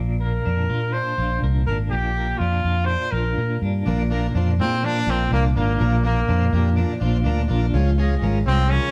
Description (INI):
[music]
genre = indie pop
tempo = 124 BPM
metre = 4/4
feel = straight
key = unclear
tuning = A4 = 440 Hz
[part]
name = twelve-string electric guitar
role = arpeggios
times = 0.0-8.9 s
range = Bb2 to F4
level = -30 LUFS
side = equal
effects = tremolo
[part]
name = vintage muted fingered electric bass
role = bass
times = 0.0-8.8 s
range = Ab1 to Bb2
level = -23 LUFS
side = equal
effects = none
[part]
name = clear trumpet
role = melody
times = 0.2-8.9 s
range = Bb3 to C5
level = -27 LUFS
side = equal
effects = none
[part]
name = combo organ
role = accompaniment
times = 3.9-8.9 s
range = Db4 to C5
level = -33 LUFS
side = equal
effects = none
[part]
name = fingerpicked steel-string acoustic guitar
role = accompaniment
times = 3.9-8.9 s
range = Bb2 to F4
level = -30 LUFS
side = equal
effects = none
[sound]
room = moderate studio reverb, RT60 0.9 s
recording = band playing live in one room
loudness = -21 LUFS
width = mono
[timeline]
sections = 0.0-3.9 A section; 3.9-8.9 B section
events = none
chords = 0.0 Bb; 7.7 Db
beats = 0.46 0.94 1.43 | 1.92 2.40 2.89 3.37 | 3.86 4.34 4.83 5.32 | 5.80 6.29 6.77 7.26 | 7.74 8.23 8.71